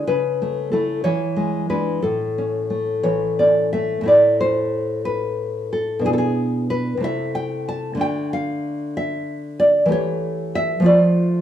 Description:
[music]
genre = romantic piece for solo classical guitar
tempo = 58-64 BPM (dotted quarters)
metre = 6/8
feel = rubato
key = A major, A minor from 4.1 s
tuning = A4 = 441 Hz
[part]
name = nylon-string guitar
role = solo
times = 0.0-11.4 s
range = A2 to A5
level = -18 LUFS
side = equal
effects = none
[sound]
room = moderate large studio reverb, RT60 1.0 s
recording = band playing live in one room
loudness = -18 LUFS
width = side -10 dB against mid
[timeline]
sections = 0.0-4.1 A section; 4.1-11.4 B section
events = none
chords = 0.1 A/C#; 1.0 E7; 2.0 A; 4.1 Am; 6.1 E7/B; 7.0 Am/C; 8.0 Dm; 9.9 A7/E; 10.9 F6

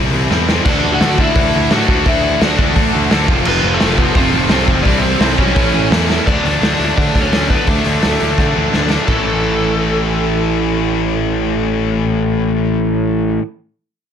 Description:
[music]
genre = punk rock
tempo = 171 BPM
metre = 4/4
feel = straight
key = unclear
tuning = A4 = 440 Hz
[part]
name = biting overdriven guitar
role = riff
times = 0.0-13.4 s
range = F2 to D4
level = -20 LUFS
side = right 12 dB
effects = none
[part]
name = tight distorted guitar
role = riff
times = 0.0-13.4 s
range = A2 to F#4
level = -18 LUFS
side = left 13 dB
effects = distortion
[part]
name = fuzz picked electric bass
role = bass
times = 0.0-13.4 s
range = F1 to D3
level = -19 LUFS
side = equal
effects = overdrive
[part]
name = raw garage drum kit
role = drums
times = 0.3-9.2 s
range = crash cymbal, hi-hat, kick drum, snare drum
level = -16 LUFS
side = equal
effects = none
[part]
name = overdriven semi-hollow guitar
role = melody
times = 0.6-13.4 s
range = A3 to F#5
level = -20 LUFS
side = left 1 dB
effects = none
[part]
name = distorted electric guitar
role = riff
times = 0.7-6.3 s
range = A2 to A4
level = -22 LUFS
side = right 2 dB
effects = overdrive
[sound]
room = light reverb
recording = none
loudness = -12 LUFS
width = side -8 dB against mid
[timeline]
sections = 0.0-6.3 A section; 6.3-9.1 B section; 9.1-11.9 C section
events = drum fill 0.3-0.7, 6.1, 8.4-9.1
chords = 0.0 C; 0.7 D; 3.3 F; 4.8 C; 5.6 A; 6.3 D; 9.1 A

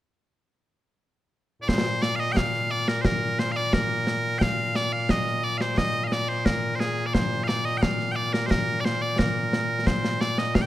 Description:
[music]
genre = scottish traditional, Scottish pipe music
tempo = 88 BPM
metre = 2/4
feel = straight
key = Bb major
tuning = A4 = 439 Hz
[part]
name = loud bright bagpipes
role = melody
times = 1.6-10.7 s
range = Bb2 to G5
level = -25 LUFS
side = equal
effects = none
[part]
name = concert snare drum and concert bass drum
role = drums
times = 1.7-10.7 s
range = none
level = -26 LUFS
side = equal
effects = none
[sound]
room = light reverb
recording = dark, warm production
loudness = -22 LUFS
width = side -14 dB against mid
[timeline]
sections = 0.3-1.7 A section; 1.7-10.7 B section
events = none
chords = none

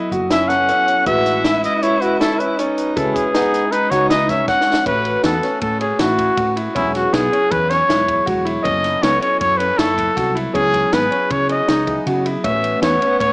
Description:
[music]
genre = progressive instrumental, band music in an uneven meter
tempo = 158 BPM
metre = 5/4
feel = straight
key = unclear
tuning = A4 = 440 Hz
[part]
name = warm alto saxophone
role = second line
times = 0.0-4.7, 12.4-13.3 s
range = B3 to E4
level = -23 LUFS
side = right 1 dB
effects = none
[part]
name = barky tine electric piano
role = accompaniment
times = 0.0-13.3 s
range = F#3 to C#5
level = -24 LUFS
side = left 1 dB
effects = overdrive, phaser
[part]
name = clear grand piano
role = arpeggios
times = 0.0-13.3 s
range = B3 to F#4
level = -22 LUFS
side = equal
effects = none
[part]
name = woody fretless electric bass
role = bass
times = 0.1-13.3 s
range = E1 to C#3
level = -25 LUFS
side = equal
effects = none
[part]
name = compact cocktail drum kit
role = drums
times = 0.1-13.3 s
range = hi-hat, kick drum, ride cymbal, snare drum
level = -23 LUFS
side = equal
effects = none
[part]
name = breathy trumpet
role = melody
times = 0.3-13.3 s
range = E4 to F#5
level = -17 LUFS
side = equal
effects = digital delay
[sound]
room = moderate studio ambience, RT60 0.5 s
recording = small speaker sound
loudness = -14 LUFS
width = side -26 dB against mid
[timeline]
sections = 0.0-4.9 A section; 4.9-13.3 B section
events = trumpet solo 0.0-4.9; drum fill 4.5-4.9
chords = 0.0 F#m7; 1.1 Amaj9; 3.0 C#m9; 4.9 Aadd9; 6.8 E6; 8.7 F#m; 10.5 C#madd9; 12.4 Aadd9

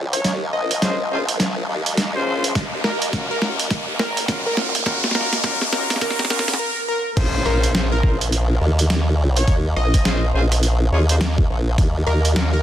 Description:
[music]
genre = glitch hop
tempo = 104 BPM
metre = 4/4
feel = swing 61% on 16ths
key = Bb minor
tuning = A4 = 439 Hz
[part]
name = formant-sweep wobble bass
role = bass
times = 0.0-12.6 s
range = Ab1 to Gb2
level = -21 LUFS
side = equal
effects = chorus, high-pass filter
[part]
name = riser and impact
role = sound effects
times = 0.1-9.5 s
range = none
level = -26 LUFS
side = equal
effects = none
[part]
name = plucky unison lead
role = melody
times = 0.1-12.6 s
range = Bb4 to Eb5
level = -26 LUFS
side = equal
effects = ping-pong delay
[part]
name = boom bap sampler-style drum kit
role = drums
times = 0.1-12.5 s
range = crash cymbal, hi-hat, rim click, snare drum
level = -23 LUFS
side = right 1 dB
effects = overdrive, small room ambience
[part]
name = warm horn section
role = stabs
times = 0.8-12.5 s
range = Db4 to Db5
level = -28 LUFS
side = left 2 dB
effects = sidechain pumping, low-pass filter, ping-pong delay
[part]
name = electronic kick drum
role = drums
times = 2.6-11.9 s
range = none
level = -20 LUFS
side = equal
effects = overdrive, small room ambience
[sound]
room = light reverb, digital ambience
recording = dense, heavily limited modern master, high-pass filter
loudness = -17 LUFS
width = side -11 dB against mid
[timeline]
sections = 0.0-7.2 A section; 7.2-12.6 B section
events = build-up 0.0-7.2; drum fill 0.0-6.6; filter sweep 0.0-7.2; riser 0.1-6.6; break 6.6-7.2; drop 7.2-12.6; impact 7.2-9.5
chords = 0.0 Bbm9; 2.6 Ebm9; 7.2 Bbm9; 11.8 Ebm9

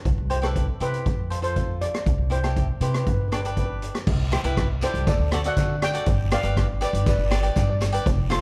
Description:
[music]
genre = calypso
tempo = 120 BPM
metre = 4/4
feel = straight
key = C major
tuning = A4 = 440 Hz
[part]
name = upright bass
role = bass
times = 0.1-8.4 s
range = F1 to D3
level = -27 LUFS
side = equal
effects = none
[part]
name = street-band drum kit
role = drums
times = 0.1-8.4 s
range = crash cymbal, hi-hat, kick drum, rim click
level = -28 LUFS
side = equal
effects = none
[part]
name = steel pan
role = melody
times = 0.3-7.8 s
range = A4 to G5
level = -32 LUFS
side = equal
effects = none
[part]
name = cavaquinho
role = accompaniment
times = 0.3-8.4 s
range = D4 to F5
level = -33 LUFS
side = equal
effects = none
[part]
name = guiro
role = percussion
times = 4.1-8.4 s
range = none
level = -43 LUFS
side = equal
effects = none
[sound]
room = little or no reverb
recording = dark, warm production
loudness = -23 LUFS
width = mono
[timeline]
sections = 0.0-4.1 A section; 4.1-8.4 B section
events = none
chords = 0.1 C; 1.1 F; 2.1 C; 3.1 G; 4.1 Cmaj7; 5.1 D; 6.1 G7

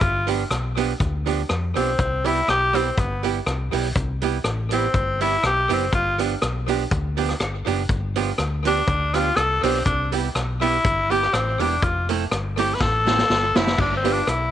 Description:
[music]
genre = ska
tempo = 122 BPM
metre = 4/4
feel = swing 54% on 8ths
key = G mixolydian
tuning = A4 = 440 Hz
[part]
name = raspy tenor saxophone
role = melody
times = 0.0-14.5 s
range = B3 to B4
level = -22 LUFS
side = left 2 dB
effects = none
[part]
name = hollow-body short-scale fingered electric bass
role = bass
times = 0.0-14.5 s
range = E1 to F2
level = -26 LUFS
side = left 1 dB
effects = none
[part]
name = vintage drum kit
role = drums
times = 0.0-14.4 s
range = crash cymbal, hi-hat, kick drum, rim click, snare drum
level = -26 LUFS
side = left 1 dB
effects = tape echo
[part]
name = archtop guitar, miked and amplified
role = accompaniment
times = 0.3-14.3 s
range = F3 to A4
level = -26 LUFS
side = right 12 dB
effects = none
[part]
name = dark upright piano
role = stabs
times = 14.0-14.2 s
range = F4 to B4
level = -29 LUFS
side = left 11 dB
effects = none
[sound]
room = light reverb, studio reverb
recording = 1960s-style stereo with parts hard left and right, nothing above 10.7 kHz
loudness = -19 LUFS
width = side -11 dB against mid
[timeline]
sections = 0.0-14.5 A section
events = tenor saxophone solo 0.0-14.5; drum fill 12.8-13.8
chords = 0.0 G7; 2.0 Cmaj7; 5.9 G7; 9.9 Cmaj7; 11.8 Fmaj7; 13.8 G7

